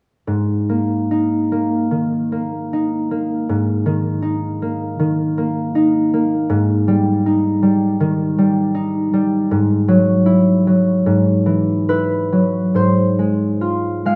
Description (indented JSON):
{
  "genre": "classical, solo harp piece",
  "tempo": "66-81 BPM",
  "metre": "4/4",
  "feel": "rubato",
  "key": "Ab mixolydian",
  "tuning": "A4 = 440 Hz",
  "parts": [
    { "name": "concert harp", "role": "solo", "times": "0.3-14.2 s", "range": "Ab2 to F5", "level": "-17 LUFS", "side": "equal", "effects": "none" }
  ],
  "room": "moderate stone room reverb, RT60 1.3 s",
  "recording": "none",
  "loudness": "-17 LUFS",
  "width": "mono",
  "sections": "0.3-12.8 A section; 12.8-14.2 B section",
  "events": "none",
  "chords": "0.3 Absus2; 6.5 Ab5; 9.5 Eadd9/G#; 12.8 Ab6"
}